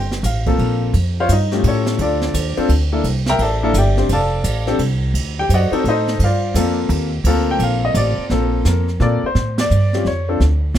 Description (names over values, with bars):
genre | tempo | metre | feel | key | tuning
jazz piano trio | 171 BPM | 3/4 | swing 65% on 8ths | G minor | A4 = 440 Hz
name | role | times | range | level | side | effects
clear grand piano | melody | 0.0-10.4 s | A3 to Bb5 | -19 LUFS | left 2 dB | none
upright bass | bass | 0.0-10.8 s | F1 to Bb2 | -18 LUFS | right 1 dB | none
jazz brush drum kit | drums | 0.1-10.8 s | brushed snare drum, hi-hat, kick drum, ride cymbal, snare drum | -26 LUFS | right 3 dB | none
room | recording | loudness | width
little or no reverb | close, detailed microphones | -15 LUFS | side -11 dB against mid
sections
0.0-8.3 A section; 8.3-10.8 B section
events
grand piano solo 0.0-8.3; band accent 9.5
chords
0.0 Gm11; 0.9 A7b13; 2.0 Dm; 3.0 C13; 4.1 F6; 5.1 D7b9; 6.2 Gm11; 8.3 Bbmaj9; 9.4 A7alt